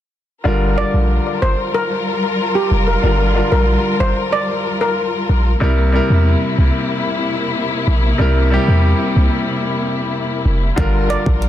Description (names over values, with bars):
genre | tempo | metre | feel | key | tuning
dancehall | 93 BPM | 4/4 | straight | G dorian | A4 = 440 Hz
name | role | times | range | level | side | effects
bright concert grand piano | accompaniment | 0.4-11.5 s | C3 to Bb4 | -20 LUFS | equal | none
warm studio string section | sustained chords | 0.5-11.5 s | C3 to Bb4 | -21 LUFS | left 3 dB | sidechain pumping
warm 808-style bass | bass | 0.5-11.5 s | F1 to E2 | -15 LUFS | equal | none
steel pan | melody | 0.8-4.9, 11.1-11.2 s | G4 to D5 | -20 LUFS | equal | ping-pong delay
pop drum kit | drums | 10.8-11.5 s | hi-hat, kick drum | -18 LUFS | equal | none
room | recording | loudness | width
studio reverb | dense, heavily limited modern master | -14 LUFS | side -11 dB against mid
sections
0.5-11.5 A section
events
none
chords
0.5 Gm7; 5.6 C7; 10.8 Gm7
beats
| 0.46 1.10 1.75 2.39 | 3.04 3.68 4.33 4.97 | 5.62 6.26 6.91 7.55 | 8.20 8.84 9.49 10.13 | 10.78 11.42